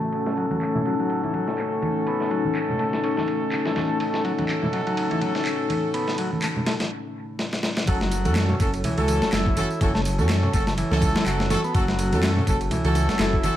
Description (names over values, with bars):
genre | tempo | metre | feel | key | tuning
breakbeat, breaks | 124 BPM | 4/4 | swing 57% on 16ths | F# dorian | A4 = 440 Hz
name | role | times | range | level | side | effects
dark analog pad | sustained chords | 0.0-13.6 s | A3 to A5 | -29 LUFS | left 4 dB | chorus, phaser, sidechain pumping
combo organ | riff | 0.0-13.6 s | E3 to E4 | -29 LUFS | equal | low-pass filter, dub echo
clear horn section | stabs | 0.1-13.5 s | A3 to A4 | -27 LUFS | right 1 dB | dub echo
dusty soul sampler-style drum kit | drums | 0.1-13.6 s | kick drum, ride cymbal, snare drum | -27 LUFS | equal | overdrive, high-pass filter on cymbals, small room ambience, high-pass filter on snare, high-pass filter on kick
congas | percussion | 0.5-13.5 s | none | -30 LUFS | right 1 dB | none
electronic handclaps and tambourine | drums | 0.6-13.5 s | none | -35 LUFS | equal | overdrive, small room ambience, dub echo
dark detuned saw bass | bass | 7.9-13.5 s | F#1 to F#2 | -24 LUFS | equal | none
room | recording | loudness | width
light reverb | echo-heavy mix, vinyl crackle, low-pass filter | -21 LUFS | side -12 dB against mid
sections
0.0-7.9 A section; 7.9-13.6 B section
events
filter sweep on transistor combo organ 0.0-7.9; filter sweep 0.0-7.9; break 6.9-7.9; drum fill 7.4-7.9; drop 7.9-13.6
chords
0.0 F#m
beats
| 0.13 0.62 1.10 1.58 | 2.07 2.55 3.04 3.52 | 4.00 4.49 4.97 5.46 | 5.94 6.42 6.91 7.39 | 7.87 8.36 8.84 9.33 | 9.81 10.29 10.78 11.26 | 11.74 12.23 12.71 13.20